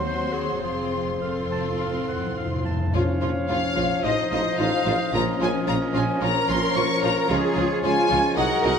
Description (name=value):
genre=classical, dramatic, fast romantic movement for symphony orchestra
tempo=101-112 BPM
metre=4/4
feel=rubato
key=Bb minor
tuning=A4 = 442 Hz
part: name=warm studio violin section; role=melody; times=0.0-8.8 s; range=Eb5 to Db6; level=-28 LUFS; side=left 4 dB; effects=none
part: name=silver concert flute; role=second line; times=0.0-8.7 s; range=Eb5 to Db6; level=-30 LUFS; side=left 2 dB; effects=none
part: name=warm clarinet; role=second line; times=0.0-8.8 s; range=F4 to Db5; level=-32 LUFS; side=left 1 dB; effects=none
part: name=warm cor anglais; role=second line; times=0.0-8.8 s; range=C5 to A5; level=-34 LUFS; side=right 1 dB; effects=none
part: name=warm symphonic violin section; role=second line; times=0.0-8.7 s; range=F4 to Eb5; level=-34 LUFS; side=left 4 dB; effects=none
part: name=mellow bassoon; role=accompaniment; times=0.0-8.8 s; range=F3 to Ab3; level=-31 LUFS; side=equal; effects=none
part: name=warm symphonic viola section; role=accompaniment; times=0.0-8.7 s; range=F3 to F4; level=-32 LUFS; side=right 1 dB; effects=none
part: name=dark French horn section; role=sustained chords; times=0.0-8.8 s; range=F3 to Eb4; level=-30 LUFS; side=left 3 dB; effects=none
part: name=dark symphonic cello section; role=bass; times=0.0-8.8 s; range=Eb2 to Bb4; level=-30 LUFS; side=right 4 dB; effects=none
part: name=dark symphonic double bass section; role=bass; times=0.0-8.7 s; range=F1 to Eb2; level=-32 LUFS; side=right 4 dB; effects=none
part: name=timpani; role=percussion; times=0.6-5.9 s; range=F2 to Bb2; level=-30 LUFS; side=equal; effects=none
part: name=warm tuba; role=bass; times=2.9-8.7 s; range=A1 to Db2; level=-30 LUFS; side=right 3 dB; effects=none
room=wet scoring stage reverb, RT60 1.8 s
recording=none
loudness=-21 LUFS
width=side -7 dB against mid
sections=0.0-2.9 A section; 2.9-8.8 B section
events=timpani fill 0.6-2.9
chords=0.0 Cdim/Eb; 0.6 F; 2.9 Bbm; 4.0 F7/A; 5.1 Bbm; 7.3 Db